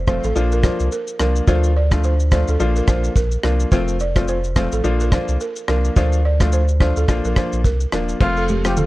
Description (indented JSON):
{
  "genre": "afrobeats",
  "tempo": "107 BPM",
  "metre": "4/4",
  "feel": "swing 58% on 16ths",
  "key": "Bb major",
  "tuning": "A4 = 440 Hz",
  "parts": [
    { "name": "saturated sub bass", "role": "bass", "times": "0.0-8.9 s", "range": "Eb1 to D2", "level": "-19 LUFS", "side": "equal", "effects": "none" },
    { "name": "clear grand piano", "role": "accompaniment", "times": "0.1-8.8 s", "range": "F3 to F4", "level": "-23 LUFS", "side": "left 3 dB", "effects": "none" },
    { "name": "balafon", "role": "riff", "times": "0.1-8.9 s", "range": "G4 to D5", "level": "-25 LUFS", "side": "right 4 dB", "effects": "ping-pong delay" },
    { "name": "deep reggae drum kit", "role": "drums", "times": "0.1-8.9 s", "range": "crash cymbal, kick drum, rim click, shaker", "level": "-19 LUFS", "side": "equal", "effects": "none" },
    { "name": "breathy trumpet", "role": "melody", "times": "8.2-8.8 s", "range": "F4 to G4", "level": "-22 LUFS", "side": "equal", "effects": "none" },
    { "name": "congas", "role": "percussion", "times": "8.5-8.9 s", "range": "none", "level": "-22 LUFS", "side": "right 1 dB", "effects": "none" }
  ],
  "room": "studio ambience",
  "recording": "worn, warbling old tape, cassette tape, warbly pitch drift",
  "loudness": "-16 LUFS",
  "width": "side -18 dB against mid",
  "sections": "0.0-8.2 A section",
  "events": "none",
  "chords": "0.4 Bb; 1.5 Dm; 2.6 Bb; 3.7 F; 4.8 Bb; 6.0 Dm; 7.1 Bb; 8.2 F"
}